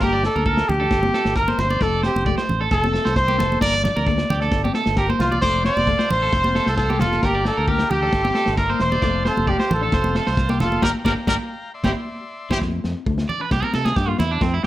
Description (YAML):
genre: highlife guitar band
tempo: 133 BPM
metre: 4/4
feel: straight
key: F major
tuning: A4 = 438 Hz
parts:
  - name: warm trumpet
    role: melody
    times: 0.0-12.6 s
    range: F4 to D5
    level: -22 LUFS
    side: equal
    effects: none
  - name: clean electric guitar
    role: accompaniment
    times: 0.0-14.7 s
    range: E3 to D4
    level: -30 LUFS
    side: left 9 dB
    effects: lush chorus
  - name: electric guitar at the edge of break-up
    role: arpeggios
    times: 0.0-14.7 s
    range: C4 to D5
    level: -25 LUFS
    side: right 5 dB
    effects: slapback echo
  - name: fingered electric bass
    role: bass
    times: 0.0-14.7 s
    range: E1 to C3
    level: -24 LUFS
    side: equal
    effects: none
  - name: crunchy breakbeat drum kit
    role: drums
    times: 0.0-14.7 s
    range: kick drum, snare drum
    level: -24 LUFS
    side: equal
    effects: none
  - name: congas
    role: percussion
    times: 0.4-14.3 s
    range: none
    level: -27 LUFS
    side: right 1 dB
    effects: none
  - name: combo organ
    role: sustained chords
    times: 5.4-12.6 s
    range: D5 to C6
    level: -35 LUFS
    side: left 2 dB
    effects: none
room: light reverb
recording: none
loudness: -17 LUFS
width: side -14 dB against mid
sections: 0.0-12.6 A section; 12.6-14.7 B section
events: band accent 10.8-12.6; clean electric guitar solo 12.6-14.7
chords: 0.0 Gm; 0.9 C5/G; 1.8 F; 3.6 Gm; 4.5 Csus2/G; 5.4 F; 7.2 Gm7; 8.1 Cadd9/G; 9.0 F; 10.8 Gm7; 11.7 Cadd9/G; 12.6 F; 13.5 C